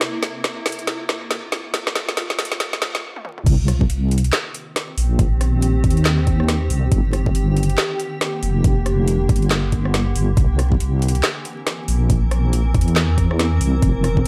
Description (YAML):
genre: deep dubstep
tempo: 139 BPM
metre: 4/4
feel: swing 60% on 16ths, half-time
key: unclear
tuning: A4 = 440 Hz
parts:
  - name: granular cloud pad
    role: sustained chords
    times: 0.0-14.3 s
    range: C3 to Bb4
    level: -29 LUFS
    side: equal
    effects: built-in reverb
  - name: garage drum kit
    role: drums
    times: 0.0-14.3 s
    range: crash cymbal, handclaps, hi-hat, rim click, snare drum, toms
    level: -25 LUFS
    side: equal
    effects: overdrive, small room ambience
  - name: deep soft wobble bass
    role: bass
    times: 3.5-14.3 s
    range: F1 to E2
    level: -20 LUFS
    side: equal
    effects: chorus, tube saturation
  - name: electronic kick drum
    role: drums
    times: 3.5-14.2 s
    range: none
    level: -20 LUFS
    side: equal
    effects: overdrive, small room ambience
room: light reverb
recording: vinyl crackle, high-pass filter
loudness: -19 LUFS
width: mono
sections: 0.0-3.5 A section; 3.5-14.3 B section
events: build-up 0.0-3.5; drum fill 0.0-3.0, 3.1-3.5; stop 3.0-3.5; drop 3.5-14.3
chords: 0.0 Fsus4; 3.5 Cm; 6.9 Gm; 10.4 C7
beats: | 0.01 0.44 0.88 1.31 | 1.74 2.17 2.60 3.03 | 3.46 3.90 4.33 4.76 | 5.19 5.62 6.05 6.49 | 6.92 7.35 7.78 8.21 | 8.64 9.08 9.51 9.94 | 10.37 10.80 11.23 11.67 | 12.10 12.53 12.96 13.39 | 13.82 14.26